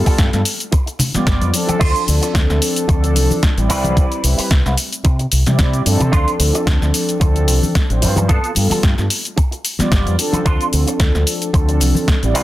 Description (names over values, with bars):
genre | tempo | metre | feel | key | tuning
nu-disco, nu disco | 111 BPM | 4/4 | swing 55% on 16ths | D dorian | A4 = 440 Hz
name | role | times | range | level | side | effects
mellow synth brass | accompaniment | 0.0-12.4 s | F3 to D5 | -20 LUFS | equal | chorus, slapback echo
fingered electric bass with an envelope filter | bass | 0.0-12.4 s | G1 to C3 | -17 LUFS | equal | none
electric guitar with an envelope filter | riff | 0.1-12.4 s | B3 to C5 | -23 LUFS | right 3 dB | ensemble chorus, slapback echo
electronic kick drum | drums | 0.1-12.2 s | none | -15 LUFS | equal | none
house drum kit | drums | 0.1-12.4 s | crash cymbal, hi-hat, shaker, snare drum | -21 LUFS | left 1 dB | none
congas | percussion | 0.3-12.1 s | none | -23 LUFS | left 2 dB | none
room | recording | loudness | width
little or no reverb | dense, heavily limited modern master | -13 LUFS | side -15 dB against mid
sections
0.0-12.4 A section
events
none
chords
0.0 G9; 1.8 Dm7; 3.7 Cmaj7; 6.1 Dm7; 8.3 G9; 10.5 Dm7